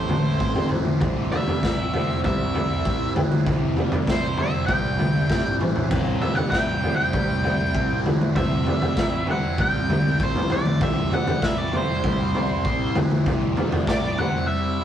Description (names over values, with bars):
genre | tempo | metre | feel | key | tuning
psychedelic rock | 98 BPM | 4/4 | straight | unclear | A4 = 440 Hz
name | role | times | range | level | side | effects
octave-fuzz lead guitar | melody | 0.0-14.8 s | C5 to G5 | -27 LUFS | equal | distortion
thick fuzz guitar | riff | 0.0-14.8 s | C3 to E4 | -26 LUFS | equal | distortion, phaser
fuzz fingered electric bass | bass | 0.0-13.5 s | F#1 to C2 | -30 LUFS | right 1 dB | overdrive
raw garage drum kit | drums | 0.1-14.3 s | crash cymbal, kick drum, snare drum, toms | -23 LUFS | equal | none
room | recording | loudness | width
light reverb | rough rehearsal-room recording, warm saturation | -20 LUFS | side -10 dB against mid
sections
0.0-14.8 A section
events
drum fill 5.3-5.9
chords
0.0 Am; 1.0 C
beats
0.41 | 1.02 1.63 2.24 2.85 | 3.46 4.07 4.68 5.30 | 5.91 6.52 7.13 7.74 | 8.36 8.97 9.58 10.20 | 10.81 11.42 12.03 12.65 | 13.26 13.87 14.49